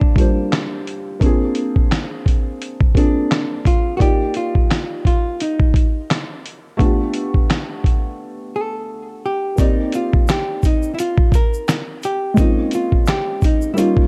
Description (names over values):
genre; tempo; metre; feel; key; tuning
lo-fi hip hop; 86 BPM; 4/4; swing 59% on 16ths; unclear; A4 = 440 Hz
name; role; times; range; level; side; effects
hollow-body jazz guitar; melody; 0.0-14.1 s; D4 to Bb4; -24 LUFS; equal; none
dark upright piano; accompaniment; 0.0-14.1 s; G3 to F5; -25 LUFS; equal; none
dusty soul sampler-style drum kit; drums; 0.0-14.1 s; handclaps, hi-hat, kick drum, snare drum; -18 LUFS; equal; none
egg shaker; percussion; 9.6-14.0 s; none; -42 LUFS; equal; none
room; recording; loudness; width
light reverb, studio ambience; dark, warm production; -18 LUFS; mono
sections
0.0-14.1 A section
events
break 8.2-9.6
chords
0.0 Gm7; 1.2 Bb7; 4.0 Ebmaj9; 6.8 G7; 9.6 Cm7; 12.4 Bbm7